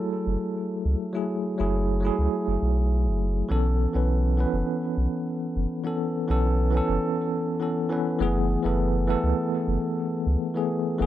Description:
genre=sunset chillout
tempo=102 BPM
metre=4/4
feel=straight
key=F# minor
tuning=A4 = 443 Hz
part: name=bell-like tine electric piano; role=accompaniment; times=0.0-11.1 s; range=E3 to B4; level=-25 LUFS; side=moving between left 4 dB and right 3 dB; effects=medium stereo tremolo, auto-pan, tape echo
part: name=warm sub bass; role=bass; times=0.3-11.1 s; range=F#1 to C#2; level=-24 LUFS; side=equal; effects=none
room=little or no reverb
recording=dry, gritty hardware recording, transformer saturation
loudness=-23 LUFS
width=side -13 dB against mid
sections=0.0-8.2 A section; 8.2-11.1 B section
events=break 7.0-8.2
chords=0.0 F#m9; 3.5 B9sus4; 8.2 F#m11

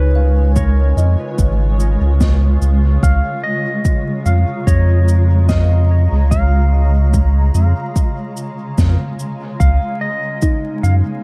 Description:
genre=ambient dub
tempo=73 BPM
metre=4/4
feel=swing 53% on 16ths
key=Db mixolydian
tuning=A4 = 439 Hz
part: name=clean lap steel guitar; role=melody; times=0.0-10.9 s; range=Cb5 to F5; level=-27 LUFS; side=equal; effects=dub echo
part: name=granular cloud pad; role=sustained chords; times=0.0-11.2 s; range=Db3 to Bb5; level=-26 LUFS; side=equal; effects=built-in reverb
part: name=kalimba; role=arpeggios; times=0.0-2.9, 10.4-11.2 s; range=Eb4 to Ab5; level=-30 LUFS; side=equal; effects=dub echo
part: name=warm sub bass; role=bass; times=0.0-11.0 s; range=Ab1 to Gb2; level=-14 LUFS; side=equal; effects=none
part: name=cabasa and snare drum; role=drums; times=0.6-11.0 s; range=none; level=-28 LUFS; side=equal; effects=dub echo
part: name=electronic kick drum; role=drums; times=0.6-10.6 s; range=none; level=-18 LUFS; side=equal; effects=none
room=small room ambience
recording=dark, warm production, vinyl crackle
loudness=-15 LUFS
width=mono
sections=0.0-11.2 A section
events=none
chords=0.0 Db; 9.6 Abmadd9

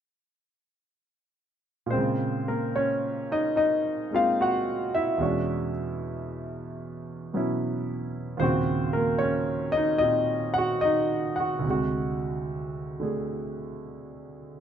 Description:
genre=solo jazz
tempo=74 BPM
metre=4/4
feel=swing 68% on 8ths, rubato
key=Bb minor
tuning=A4 = 439 Hz
part: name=clear concert grand piano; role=solo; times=1.9-14.6 s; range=D2 to Gb5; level=-25 LUFS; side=equal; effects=none
room=light reverb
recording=none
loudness=-24 LUFS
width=side -8 dB against mid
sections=1.9-14.6 A section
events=none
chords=1.9 Bbm9; 5.2 E13; 8.4 Ebm7; 11.6 D7#11

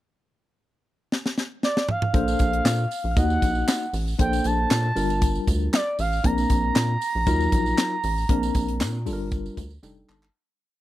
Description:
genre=early-eighties boogie funk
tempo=117 BPM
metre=4/4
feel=straight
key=Bb major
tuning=A4 = 440 Hz
part: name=tight funk drum kit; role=drums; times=1.1-10.3 s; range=handclaps, hi-hat, kick drum, snare drum, toms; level=-24 LUFS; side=equal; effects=none
part: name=expressive portamento lead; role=melody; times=1.6-9.8 s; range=D5 to Bb5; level=-26 LUFS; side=right 1 dB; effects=chorus
part: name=tine electric piano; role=accompaniment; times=2.1-10.3 s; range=Gb3 to A5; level=-27 LUFS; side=left 2 dB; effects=overdrive, fast stereo tremolo
part: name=rubbery square bass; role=bass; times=2.1-10.3 s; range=F1 to Bb2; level=-26 LUFS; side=equal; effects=none
part: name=tambourine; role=percussion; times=2.3-10.3 s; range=none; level=-39 LUFS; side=right 10 dB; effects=none
room=small room ambience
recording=dry, close 1970s-style studio recording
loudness=-21 LUFS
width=side -15 dB against mid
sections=0.1-2.1 pickup bar; 2.1-10.3 verse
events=drum fill 1.1-2.1, 9.8-10.3; fade-out 8.3-10.3; tine electric piano fill 9.6-10.3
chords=0.1 N.C.; 2.1 Bbmaj9; 3.2 Ebm; 4.2 Bbmaj9; 5.0 Gm7; 6.2 Bbadd9; 7.3 Ebmadd9; 8.3 Bbadd9; 9.1 Gm7; 9.8 F13

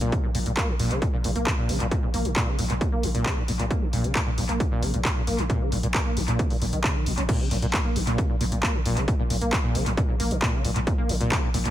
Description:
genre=driving peak-time techno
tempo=134 BPM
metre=4/4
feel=straight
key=Bb minor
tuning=A4 = 442 Hz
part: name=overdriven acid bass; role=riff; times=0.0-11.7 s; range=Bb2 to Db4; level=-28 LUFS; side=equal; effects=ensemble chorus, sidechain pumping, analog delay
part: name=growling 808-style bass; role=bass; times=0.0-11.7 s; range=Bb1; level=-29 LUFS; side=equal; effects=tube saturation, sidechain pumping, low-pass filter
part: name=techno drum kit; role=drums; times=0.0-11.7 s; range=crash cymbal, handclaps, hi-hat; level=-30 LUFS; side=equal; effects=overdrive, analog delay
part: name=electronic kick drum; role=drums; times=0.1-11.4 s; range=none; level=-25 LUFS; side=equal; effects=overdrive
room=light reverb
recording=echo-heavy mix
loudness=-22 LUFS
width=side -12 dB against mid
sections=0.0-7.3 A section; 7.3-11.7 B section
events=drop 7.3-11.7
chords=0.0 Bbm; 7.3 Bb5

